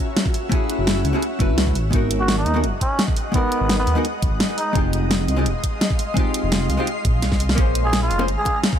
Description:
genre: liquid drum and bass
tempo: 170 BPM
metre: 4/4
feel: straight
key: unclear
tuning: A4 = 440 Hz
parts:
  - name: shimmering ambient pad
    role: sustained chords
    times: 0.0-8.8 s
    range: Ab3 to C6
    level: -28 LUFS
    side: left 1 dB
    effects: chorus, built-in reverb, vintage 12-bit sampler grit
  - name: pop drum kit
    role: drums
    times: 0.2-8.7 s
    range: hi-hat, snare drum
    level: -22 LUFS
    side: equal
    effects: small room reverb
  - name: electronic kick drum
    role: drums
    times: 0.3-8.8 s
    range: none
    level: -21 LUFS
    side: equal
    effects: small room reverb
  - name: hollow-body jazz guitar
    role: accompaniment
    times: 0.5-8.3 s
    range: Ab3 to C5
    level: -25 LUFS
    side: equal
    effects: tape echo
  - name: dark detuned saw bass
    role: bass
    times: 0.8-8.4 s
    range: Eb1 to Eb2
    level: -22 LUFS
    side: equal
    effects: tube saturation
  - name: trumpet with cup mute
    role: melody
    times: 2.2-4.8, 7.8-8.6 s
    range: Cb4 to Ab4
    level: -25 LUFS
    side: right 1 dB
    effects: dub echo
  - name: bongos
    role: percussion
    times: 8.2-8.5 s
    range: none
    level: -32 LUFS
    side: left 9 dB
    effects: none
room: little or no reverb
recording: none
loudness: -18 LUFS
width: side -9 dB against mid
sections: 0.0-8.8 A section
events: drum fill 7.2-7.6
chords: 0.0 Gbm7; 1.8 Abm7; 4.8 Fm7; 7.6 Bbm7

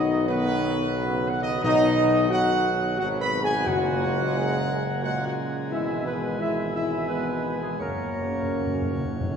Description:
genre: classical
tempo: 88 BPM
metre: 3/4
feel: straight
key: B major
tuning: A4 = 441 Hz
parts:
  - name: dark trumpet section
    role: melody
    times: 0.0-9.4 s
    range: G#4 to B5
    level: -28 LUFS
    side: right 1 dB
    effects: none
  - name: chamber organ, principal chorus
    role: sustained chords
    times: 0.0-9.4 s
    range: C#3 to C#5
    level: -31 LUFS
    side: equal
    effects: none
  - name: mellow French horn section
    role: sustained chords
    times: 0.0-9.4 s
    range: G#3 to B4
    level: -28 LUFS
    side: left 4 dB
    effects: none
  - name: warm trombone section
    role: sustained chords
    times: 0.0-9.4 s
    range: A#2 to C#4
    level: -32 LUFS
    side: right 3 dB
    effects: none
  - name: warm tuba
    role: bass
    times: 0.0-9.4 s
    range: F#1 to B1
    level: -30 LUFS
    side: right 3 dB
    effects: none
  - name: timpani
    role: percussion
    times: 1.6-4.6, 7.8-9.4 s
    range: F#2 to B2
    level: -34 LUFS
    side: equal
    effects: none
room: wet church reverb, RT60 2.6 s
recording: minimal, uncompressed stereo recording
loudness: -22 LUFS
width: side -7 dB against mid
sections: 0.0-9.4 A section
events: timpani fill 7.8-9.4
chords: 0.0 B; 3.7 F#add9; 5.7 E/G#; 7.8 F#

